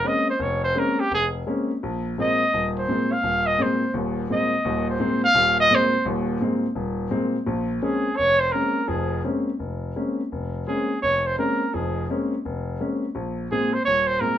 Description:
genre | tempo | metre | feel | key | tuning
jazz | 170 BPM | 4/4 | swing 65% on 8ths | Bb minor | A4 = 441 Hz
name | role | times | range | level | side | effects
warm trumpet | melody | 0.0-14.4 s | G4 to F5 | -21 LUFS | right 1 dB | none
warm grand piano | accompaniment | 0.0-14.4 s | Eb1 to Db4 | -24 LUFS | left 1 dB | none
room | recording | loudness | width
moderate studio reverb, RT60 0.5 s | minimal, uncompressed stereo recording | -21 LUFS | side -11 dB against mid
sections
0.0-7.5 A section; 7.5-14.4 B section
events
trumpet solo 0.0-7.5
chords
0.0 Bbm9; 1.8 Abadd9; 7.5 Bbm9; 13.1 Abadd9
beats
0.04 | 0.39 0.75 1.10 1.45 | 1.81 2.16 2.51 2.87 | 3.22 3.58 3.93 4.28 | 4.63 4.99 5.34 5.70 | 6.05 6.40 6.76 7.11 | 7.47 7.82 8.18 8.53 | 8.88 9.24 9.59 9.95 | 10.30 10.66 11.01 11.37 | 11.72 12.08 12.43 12.79 | 13.14 13.49 13.85 14.20

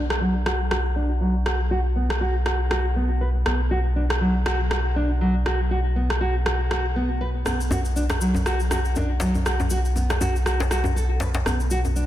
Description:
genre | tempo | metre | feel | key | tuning
afro house | 120 BPM | 4/4 | swing 57% on 16ths | B minor | A4 = 442 Hz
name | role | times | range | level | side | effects
nylon-string guitar | arpeggios | 0.0-12.0 s | F#3 to B4 | -26 LUFS | equal | low-pass filter, ping-pong delay
smooth gliding synth bass | bass | 0.0-12.1 s | B1 | -23 LUFS | equal | none
electronic rim click | drums | 0.1-11.6 s | none | -28 LUFS | equal | soft clipping on snare
djembe | percussion | 7.5-11.9 s | none | -28 LUFS | left 1 dB | none
tube shaker | percussion | 7.5-12.1 s | none | -37 LUFS | left 3 dB | none
room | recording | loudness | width
light reverb, small room ambience | dense, heavily limited modern master | -20 LUFS | side -12 dB against mid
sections
0.0-12.1 A section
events
filter sweep on nylon-string guitar 0.0-12.1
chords
0.0 B5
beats
0.46 0.96 | 1.46 1.96 2.46 2.96 | 3.46 3.96 4.46 4.96 | 5.46 5.96 6.46 6.96 | 7.46 7.96 8.46 8.96 | 9.46 9.96 10.46 10.96 | 11.46 11.96

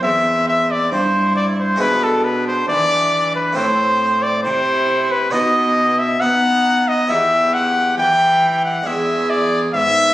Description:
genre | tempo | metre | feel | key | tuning
classical, baroque-style sonata movement with continuo | 68 BPM | 4/4 | straight | unclear | A4 = 440 Hz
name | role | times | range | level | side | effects
clear trumpet | melody | 0.0-10.1 s | A4 to G5 | -15 LUFS | left 1 dB | none
warm violin | second line | 0.0-10.1 s | B3 to G#4 | -26 LUFS | right 4 dB | none
harpsichord | accompaniment | 0.0-10.1 s | E2 to E4 | -26 LUFS | right 1 dB | none
rich cello | bass | 0.0-10.1 s | E2 to B3 | -22 LUFS | equal | none
room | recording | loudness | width
moderate recital hall reverb, RT60 1.3 s | recorded on a phone in the room, club reverb | -14 LUFS | side -15 dB against mid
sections
0.0-10.1 A section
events
none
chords
0.0 Am; 1.8 E7/B; 3.6 Am; 5.3 B; 7.1 Em; 8.9 E7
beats
0.03 0.92 | 1.80 2.69 3.57 4.45 | 5.33 6.22 7.10 7.98 | 8.86 9.75

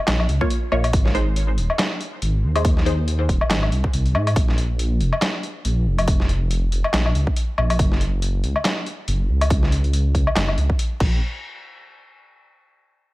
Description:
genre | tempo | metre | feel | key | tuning
deep dubstep | 140 BPM | 4/4 | swing 57% on 16ths, half-time | unclear | A4 = 442 Hz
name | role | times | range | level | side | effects
dark detuned saw bass | bass | 0.1-11.2 s | Eb1 to Ab2 | -20 LUFS | equal | tube saturation
trip hop sampler-style drum kit | drums | 0.1-11.1 s | crash cymbal, handclaps, hi-hat, snare drum, woodblock | -24 LUFS | left 1 dB | none
filtered dub chord stab | stabs | 0.4-3.0 s | Ab3 to Db5 | -27 LUFS | left 1 dB | phaser, dub echo
electronic kick drum | drums | 0.4-11.1 s | none | -20 LUFS | equal | overdrive
room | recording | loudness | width
digital ambience | none | -18 LUFS | side -19 dB against mid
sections
0.0-11.2 A section; 11.2-12.9 B section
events
none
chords
0.0 Bbm; 0.9 Ab; 4.4 Bb5; 7.8 Gb5; 11.0 N.C.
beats
0.08 0.51 | 0.93 1.36 1.79 2.22 | 2.65 3.08 3.50 3.93 | 4.36 4.79 5.22 5.65 | 6.08 6.50 6.93 7.36 | 7.79 8.22 8.65 9.08 | 9.51 9.93 10.36 10.79

